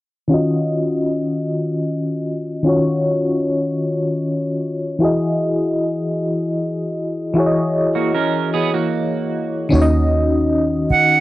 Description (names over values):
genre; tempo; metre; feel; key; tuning
R&B; 51 BPM (dotted quarters); 6/8; straight; Eb phrygian; A4 = 440 Hz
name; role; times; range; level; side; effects
FM electric piano; accompaniment; 0.3-11.2 s; Eb3 to Eb5; -17 LUFS; left 1 dB; chorus, tremolo
electric guitar at the edge of break-up; second line; 8.0-9.7 s; Bb3 to Bb4; -21 LUFS; right 9 dB; lush chorus
vintage muted fingered electric bass; bass; 9.7-10.9 s; Eb2; -18 LUFS; right 1 dB; none
breathy bright concert flute; melody; 10.9-11.2 s; Gb5; -11 LUFS; right 6 dB; none
room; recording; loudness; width
light reverb; dry, close 1970s-style studio recording, low-pass filter; -16 LUFS; side -16 dB against mid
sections
0.3-9.7 A section; 9.7-11.2 B section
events
filter sweep 0.3-9.7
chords
0.3 Ebm9; 5.0 Emaj9; 9.7 Ebm7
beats
| 0.29 1.47 | 2.64 3.82 | 5.00 6.17 | 7.35 8.53 | 9.70 10.88